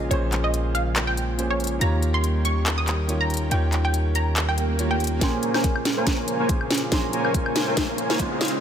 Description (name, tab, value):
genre	future bass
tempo	141 BPM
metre	4/4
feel	swing 55% on 16ths, half-time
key	Bb dorian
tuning	A4 = 439 Hz
part	warm grand piano	accompaniment	0.0-8.6 s	Bb2 to C6	-30 LUFS	right 2 dB	sidechain pumping, digital delay
part	airy breathy pad	sustained chords	0.0-8.6 s	Db3 to G4	-33 LUFS	equal	chorus, sidechain pumping
part	warm 808-style bass	bass	0.0-8.6 s	Bb1 to Eb2	-24 LUFS	equal	sidechain pumping, high-pass filter
part	wide unison pluck	melody	0.1-5.1 s	Db5 to Eb6	-28 LUFS	right 1 dB	sidechain pumping, digital delay
part	trap drum kit	drums	0.1-8.6 s	handclaps, hi-hat, snare drum, woodblock	-26 LUFS	equal	none
part	swell and riser	sound effects	4.5-8.6 s	none	-33 LUFS	right 2 dB	none
part	soft supersaw	riff	5.2-8.5 s	Bb3 to Bb5	-25 LUFS	equal	sidechain pumping, low-pass filter, digital delay
part	electronic kick drum	drums	5.2-8.3 s	none	-25 LUFS	equal	overdrive
room	light reverb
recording	high-pass filter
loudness	-20 LUFS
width	side -8 dB against mid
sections	0.0-5.2 A section; 5.2-8.6 B section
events	swell 4.5-5.2; build-up 5.2-8.6; drum fill 5.2-8.6; filter sweep on supersaw synth 5.2-8.6; riser 6.6-8.6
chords	0.0 Bbm7; 1.8 Eb7; 5.2 Bbm7